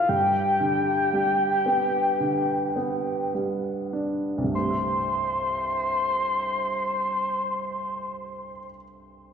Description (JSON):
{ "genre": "pop", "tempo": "48-59 BPM", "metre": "4/4", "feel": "straight", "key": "C major", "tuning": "A4 = 440 Hz", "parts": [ { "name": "soft octave-layered synth lead", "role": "melody", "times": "0.0-8.7 s", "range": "F5 to C6", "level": "-24 LUFS", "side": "left 1 dB", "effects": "chorus, slapback echo, digital delay" }, { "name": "warm upright piano", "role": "accompaniment", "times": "0.0-9.3 s", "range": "C2 to E5", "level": "-28 LUFS", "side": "right 2 dB", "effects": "slapback echo" } ], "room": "light reverb", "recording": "live gig heard through the venue's PA, recital hall reverb", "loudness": "-23 LUFS", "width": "side -7 dB against mid", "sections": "0.0-4.5 A section; 4.5-9.3 B section", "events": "slowing down 0.0-4.5", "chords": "0.1 G; 4.5 C6", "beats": "| 0.08 1.12 2.20 3.34 | 4.54 5.78 7.02 8.26" }